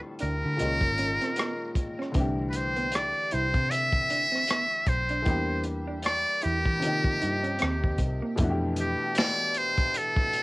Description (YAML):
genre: R&B, neo-soul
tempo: 77 BPM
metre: 4/4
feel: swing 58% on 16ths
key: unclear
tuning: A4 = 437 Hz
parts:
  - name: warm upright piano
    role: accompaniment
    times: 0.0-10.4 s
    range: A2 to G4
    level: -33 LUFS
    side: left 2 dB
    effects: cassette tape
  - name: trumpet with metal mute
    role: melody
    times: 0.2-10.4 s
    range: G4 to E5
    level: -28 LUFS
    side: equal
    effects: cassette tape
  - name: electric guitar through a small old amp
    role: second line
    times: 0.2-8.3 s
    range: Bb3 to E4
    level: -35 LUFS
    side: right 3 dB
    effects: cassette tape
  - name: vintage muted picked electric bass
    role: bass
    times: 0.2-8.9 s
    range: G#1 to E3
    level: -31 LUFS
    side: equal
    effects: none
  - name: crunchy breakbeat drum kit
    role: drums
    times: 0.2-10.4 s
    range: finger snaps, hi-hat, kick drum, rim click, snare drum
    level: -29 LUFS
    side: equal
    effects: none
room: light reverb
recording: home recording on cassette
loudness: -24 LUFS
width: side -24 dB against mid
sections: 0.0-8.4 A section; 8.4-10.4 B section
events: none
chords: 0.0 Dm7; 0.6 C#69; 2.2 C69; 5.3 Em7b5; 6.8 Ebadd9; 8.4 Fmaj9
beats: 0.59 1.37 | 2.15 2.93 3.71 4.49 | 5.27 6.05 6.83 7.61 | 8.39 9.16 9.95